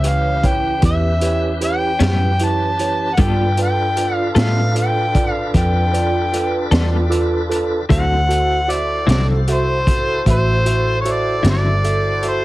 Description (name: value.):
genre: slow blues.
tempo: 51 BPM (dotted quarters).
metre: 12/8.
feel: straight.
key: unclear.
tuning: A4 = 440 Hz.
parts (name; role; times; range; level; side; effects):
mellow harmonica; melody; 0.0-12.4 s; C5 to A5; -20 LUFS; left 1 dB; overdrive.
barky tine electric piano; accompaniment; 0.0-12.4 s; E4 to F5; -23 LUFS; right 3 dB; phaser.
tonewheel organ; sustained chords; 0.0-12.4 s; E3 to C5; -26 LUFS; equal; slow rotary speaker, overdrive.
vintage muted fingered electric bass; bass; 0.0-12.4 s; G1 to A2; -19 LUFS; equal; none.
crunchy breakbeat drum kit; drums; 0.0-12.4 s; hi-hat, kick drum, snare drum; -20 LUFS; equal; none.
clean electric guitar; accompaniment; 2.0-11.7 s; A2 to A4; -23 LUFS; left 5 dB; tremolo.
room: light reverb.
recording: heavily compressed radio sound.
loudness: -14 LUFS.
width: side -17 dB against mid.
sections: 0.0-12.4 A section.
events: none.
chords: 0.0 A9; 3.2 G9; 7.9 D9.